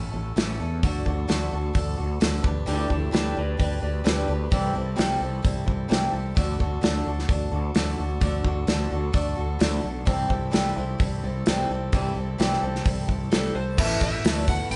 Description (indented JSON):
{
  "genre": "folk rock and heartland rock",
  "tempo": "130 BPM",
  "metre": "4/4",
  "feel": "straight",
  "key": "unclear",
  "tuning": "A4 = 440 Hz",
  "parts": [
    { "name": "picked swing-style acoustic guitar", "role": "accompaniment", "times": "0.0-14.8 s", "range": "A2 to B4", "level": "-32 LUFS", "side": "equal", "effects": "none" },
    { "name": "fretless electric bass", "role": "bass", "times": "0.0-14.8 s", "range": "A1 to E2", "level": "-30 LUFS", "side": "equal", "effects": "none" },
    { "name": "loose indie drum kit", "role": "drums", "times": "0.4-14.8 s", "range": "crash cymbal, hi-hat, kick drum, snare drum", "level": "-28 LUFS", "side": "equal", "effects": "none" },
    { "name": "electric slide guitar", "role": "second line", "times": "2.7-5.4 s", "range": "E4 to D5", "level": "-36 LUFS", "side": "equal", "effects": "none" },
    { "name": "electric slide guitar", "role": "melody", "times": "13.3-14.8 s", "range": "A4 to G5", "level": "-32 LUFS", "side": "equal", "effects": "none" },
    { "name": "warm upright piano", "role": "accompaniment", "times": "13.8-14.8 s", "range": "A4 to E5", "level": "-40 LUFS", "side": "equal", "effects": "none" },
    { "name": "mellow tonewheel organ", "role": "sustained chords", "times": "13.8-14.8 s", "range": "B3 to B4", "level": "-39 LUFS", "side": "equal", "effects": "none" },
    { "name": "tambourine", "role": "percussion", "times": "14.0-14.8 s", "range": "none", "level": "-47 LUFS", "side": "equal", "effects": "none" }
  ],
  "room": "moderate large studio reverb, RT60 1.0 s",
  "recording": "band playing live in one room, nothing above 10.9 kHz",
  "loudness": "-25 LUFS",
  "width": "mono",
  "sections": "0.0-13.8 A section",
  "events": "none",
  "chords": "0.0 A; 0.8 D; 2.4 G/D; 4.5 C6; 6.4 D; 10.1 C6; 13.8 Asus2",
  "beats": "0.36 | 0.82 1.28 1.75 2.21 | 2.67 3.13 3.59 4.05 | 4.51 4.98 5.44 5.90 | 6.36 6.83 7.29 7.75 | 8.22 8.68 9.14 9.61 | 10.07 10.54 11.00 11.46 | 11.93 12.39 12.86 13.32 | 13.79 14.25 14.71"
}